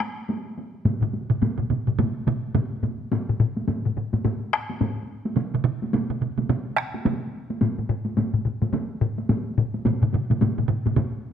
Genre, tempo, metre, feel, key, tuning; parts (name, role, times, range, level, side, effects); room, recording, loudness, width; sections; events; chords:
japanese traditional, taiko drum ensemble; 107 BPM; 4/4; swing 60% on 16ths
taiko ensemble; percussion; 0.0-11.1 s; -28 LUFS; right 1 dB
taiko ensemble; percussion; 0.0-11.1 s; -25 LUFS; left 3 dB
taiko ensemble; percussion; 0.8-11.1 s; -25 LUFS; right 5 dB
wet recital hall reverb, RT60 1.7 s; close, detailed microphones; -22 LUFS; side -8 dB against mid
0.0-3.1 A section; 3.1-11.3 B section